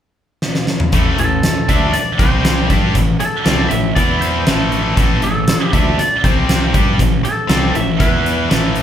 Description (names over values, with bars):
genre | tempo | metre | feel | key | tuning
hard rock | 119 BPM | 4/4 | straight | A minor | A4 = 438 Hz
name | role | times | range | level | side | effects
huge arena drum kit | drums | 0.4-8.8 s | hi-hat, kick drum, snare drum, toms | -16 LUFS | equal | none
heavy high-gain guitar | riff | 0.9-8.8 s | A2 to G4 | -22 LUFS | right 7 dB | distortion
tight distorted guitar | riff | 0.9-8.8 s | A2 to G4 | -20 LUFS | left 7 dB | distortion
fuzz fingered electric bass | bass | 0.9-8.8 s | A1 to G2 | -20 LUFS | right 1 dB | overdrive
lightly driven lead guitar | melody | 1.2-8.5 s | A4 to E5 | -21 LUFS | equal | none
room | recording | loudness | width
moderate large studio reverb, RT60 0.9 s | band playing live in one room | -12 LUFS | side -10 dB against mid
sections
0.9-8.8 A section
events
drum fill 0.4-0.9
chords
0.0 N.C.; 0.9 A5; 2.2 C5; 2.7 Am; 4.0 E5; 4.5 A5; 6.2 C5; 6.7 Am; 8.0 E5